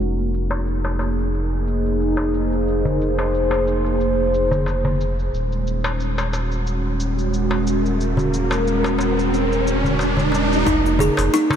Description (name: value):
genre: organic downtempo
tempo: 90 BPM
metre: 4/4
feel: swing 55% on 16ths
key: unclear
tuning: A4 = 439 Hz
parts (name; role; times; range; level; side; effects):
- warm analog pad; sustained chords; 0.0-11.6 s; Ab3 to C5; -22 LUFS; right 1 dB; chorus, sidechain pumping
- warm sub bass; bass; 0.0-11.3 s; Eb1 to F1; -23 LUFS; equal; sidechain pumping
- electronic shaker and hi-hat; drums; 0.0-11.6 s; none; -38 LUFS; left 1 dB; low-pass filter on perc, low-pass filter on hats
- bronze singing bowl; texture; 0.0-10.7 s; Eb4; -40 LUFS; left 5 dB; none
- darbuka; percussion; 0.5-11.6 s; none; -27 LUFS; left 2 dB; none
- riser; sound effects; 6.9-10.7 s; none; -25 LUFS; right 1 dB; none
- kalimba; arpeggios; 10.7-11.5 s; Eb4 to Ab4; -18 LUFS; equal; analog delay
- electronic kick drum; drums; 10.7-10.8 s; none; -26 LUFS; equal; none
room: moderate huge ambient reverb, RT60 8.4 s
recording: dreamy mix soaked in reverb, low-pass filter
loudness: -18 LUFS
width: side -8 dB against mid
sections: 0.0-10.7 A section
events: filter sweep 0.0-10.7; riser 6.9-10.7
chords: 0.0 Fm7; 5.3 Ebm; 10.7 Fm7